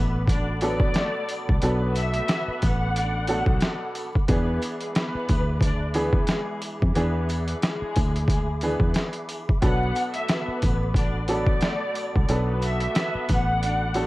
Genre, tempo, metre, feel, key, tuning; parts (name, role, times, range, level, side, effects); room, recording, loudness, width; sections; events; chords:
hip hop, boom-bap hip-hop; 90 BPM; 4/4; swing 56% on 16ths; B dorian; A4 = 441 Hz
warm upright piano; accompaniment; 0.0-14.1 s; B2 to A4; -30 LUFS; right 1 dB; cassette tape, high-pass filter, low-pass filter
mellow tonewheel organ; sustained chords; 0.0-14.1 s; G#4 to D6; -36 LUFS; equal; chorus vibrato, stopped rotary speaker, high-pass filter, low-pass filter
bright studio string section; stabs; 0.0-14.1 s; G#3 to D5; -33 LUFS; left 2 dB; high-pass filter, low-pass filter, digital delay
fingered electric bass; bass; 0.0-14.1 s; A1 to E#2; -26 LUFS; equal
boom bap sampler-style drum kit; drums; 0.3-14.1 s; hi-hat, kick drum, snare drum; -24 LUFS; equal; overdrive
sleigh bells; percussion; 0.3-14.1 s; -46 LUFS; left 2 dB
warm studio violin section; melody; 0.6-3.8, 9.6-14.1 s; D5 to F#5; -29 LUFS; left 1 dB; high-pass filter, low-pass filter, digital delay
small room ambience; worn, warbling old tape, cassette tape, vinyl crackle, warbly pitch drift; -22 LUFS; side -19 dB against mid
0.0-14.1 A section
0.0 Bm7; 4.3 E7; 9.6 Bm7